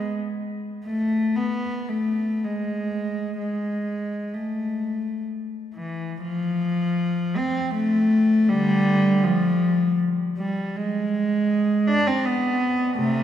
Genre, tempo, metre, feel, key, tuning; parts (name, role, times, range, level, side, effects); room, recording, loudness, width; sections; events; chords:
classical, free, expressive piece for unaccompanied cello; 53-82 BPM; 3/4; rubato; A minor; A4 = 440 Hz
warm cello; solo; 0.0-13.2 s; C3 to D4; -21 LUFS; equal
wet church reverb, RT60 3.7 s; minimal, uncompressed stereo recording; -21 LUFS; side -10 dB against mid
0.0-6.2 A section; 6.2-13.2 B section